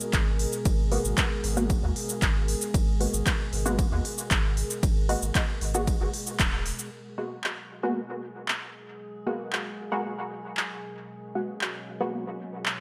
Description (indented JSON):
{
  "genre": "dub techno",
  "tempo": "115 BPM",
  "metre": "4/4",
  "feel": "straight",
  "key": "G# minor",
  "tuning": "A4 = 440 Hz",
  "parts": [
    { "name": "warbly tape-like pad", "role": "sustained chords", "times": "0.0-12.8 s", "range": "B2 to A#4", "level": "-40 LUFS", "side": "equal", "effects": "chorus, built-in reverb, sidechain pumping" },
    { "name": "deep house drum kit", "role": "drums", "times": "0.0-12.8 s", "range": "handclaps, hi-hat, ride cymbal, shaker", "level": "-33 LUFS", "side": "equal", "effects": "none" },
    { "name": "warm sub bass", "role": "bass", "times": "0.1-6.7 s", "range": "D#1 to D#2", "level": "-31 LUFS", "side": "equal", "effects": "sidechain pumping" },
    { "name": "electronic kick drum", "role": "drums", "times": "0.1-6.5 s", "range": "none", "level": "-29 LUFS", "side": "equal", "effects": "none" },
    { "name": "filtered dub chord stab", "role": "stabs", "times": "0.9-12.2 s", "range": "G#3 to F#4", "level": "-34 LUFS", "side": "equal", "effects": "chorus, phaser, sidechain pumping, dub echo" },
    { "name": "metallic inharmonic drone", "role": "texture", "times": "7.7-12.8 s", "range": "G#3 to G#4", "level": "-45 LUFS", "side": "equal", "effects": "chorus, built-in reverb, sidechain pumping" }
  ],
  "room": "light reverb",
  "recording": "none",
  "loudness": "-28 LUFS",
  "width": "mono",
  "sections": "0.0-6.9 A section; 6.9-12.8 B section",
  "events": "band accent 6.4",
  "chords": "0.0 G#m9"
}